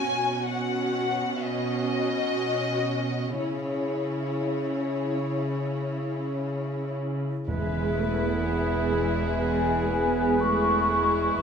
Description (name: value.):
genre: cinematic, emotional film score for orchestra.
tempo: 57-65 BPM.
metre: 4/4.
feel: rubato.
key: C# minor, E major from 7.5 s.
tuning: A4 = 440 Hz.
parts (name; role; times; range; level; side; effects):
dark studio violin section; melody; 0.0-11.4 s; G#4 to G#5; -32 LUFS; left 4 dB; none.
dark studio viola section; accompaniment; 0.0-11.4 s; G#3 to F#4; -31 LUFS; right 2 dB; none.
warm symphonic cello section; bass; 0.0-11.4 s; E2 to C#3; -30 LUFS; right 2 dB; none.
mellow clarinet; second line; 7.5-11.4 s; G#4; -34 LUFS; right 1 dB; none.
mellow hollow small flute group; second line; 7.5-11.4 s; E5 to C#6; -28 LUFS; left 3 dB; none.
warm chamber violin section; second line; 7.5-11.4 s; E4; -34 LUFS; left 1 dB; none.
warm oboe; second line; 7.5-11.4 s; B4; -34 LUFS; right 2 dB; none.
mellow French horn section; sustained chords; 7.5-11.4 s; B3 to G#4; -31 LUFS; left 2 dB; none.
rich symphonic double bass section; bass; 7.5-11.4 s; E1; -31 LUFS; right 3 dB; none.
timpani; percussion; 7.5-8.9 s; E2; -34 LUFS; right 1 dB; none.
room: wet scoring stage reverb, RT60 1.5 s.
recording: minimal, uncompressed stereo recording.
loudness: -24 LUFS.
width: side -6 dB against mid.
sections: 0.0-7.5 A section; 7.5-11.4 B section.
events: none.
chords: 0.0 Badd9; 3.4 C#m; 7.5 E.